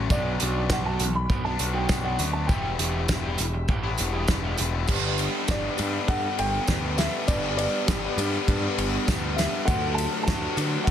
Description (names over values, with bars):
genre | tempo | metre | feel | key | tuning
indie rock | 100 BPM | 4/4 | straight | unclear | A4 = 444 Hz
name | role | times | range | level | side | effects
mellow tonewheel organ | sustained chords | 0.0-10.9 s | F#3 to B5 | -40 LUFS | left 1 dB | none
thick fuzz guitar | riff | 0.0-10.9 s | F#3 to E4 | -31 LUFS | left 9 dB | distortion
growling picked electric bass | bass | 0.0-10.9 s | E1 to D3 | -29 LUFS | equal | overdrive
dark upright piano | melody | 0.1-10.9 s | D5 to B5 | -31 LUFS | equal | slapback echo
raw garage guitar | riff | 0.1-10.9 s | D3 to B4 | -33 LUFS | right 6 dB | overdrive, lush chorus, slapback echo
loose indie drum kit | drums | 0.1-10.9 s | crash cymbal, hi-hat, kick drum, ride cymbal, snare drum | -26 LUFS | equal | soft clipping on kick, soft clipping on snare
tambourine | percussion | 0.1-10.7 s | none | -38 LUFS | right 6 dB | none
mellow tine electric piano | second line | 4.9-10.9 s | F#4 to A4 | -38 LUFS | equal | medium stereo tremolo
room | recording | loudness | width
little or no reverb | dense, heavily limited modern master | -23 LUFS | side -10 dB against mid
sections
0.0-4.9 A section; 4.9-10.9 B section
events
none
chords
0.1 Bm; 2.5 Em; 4.9 G; 9.7 D6